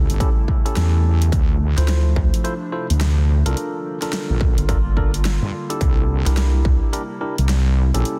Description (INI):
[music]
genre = glitch hop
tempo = 107 BPM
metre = 4/4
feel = swing 62% on 16ths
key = unclear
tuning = A4 = 440 Hz
[part]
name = warbly tape-like pad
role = sustained chords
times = 0.0-8.2 s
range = C3 to F4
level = -34 LUFS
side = equal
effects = chorus, built-in reverb, sidechain pumping
[part]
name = bright tine electric piano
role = stabs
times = 0.0-8.2 s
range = C#4 to C5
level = -30 LUFS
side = equal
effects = sidechain pumping, low-pass filter, dub echo
[part]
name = wobble bass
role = bass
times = 0.0-8.0 s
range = G1 to G2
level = -19 LUFS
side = equal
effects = chorus
[part]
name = dubstep drum kit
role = drums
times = 0.1-8.2 s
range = hi-hat, snare drum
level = -31 LUFS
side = equal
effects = none
[part]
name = electronic kick drum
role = drums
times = 0.2-6.8 s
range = none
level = -21 LUFS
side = equal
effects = distortion
[part]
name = rubbery square bass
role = bass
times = 1.8-6.8 s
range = G1 to D2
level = -20 LUFS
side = equal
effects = none
[sound]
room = little or no reverb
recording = dense, heavily limited modern master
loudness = -19 LUFS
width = mono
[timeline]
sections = 0.0-8.2 A section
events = none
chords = 0.0 A7; 1.3 Dm7; 3.6 Gm7; 5.8 C7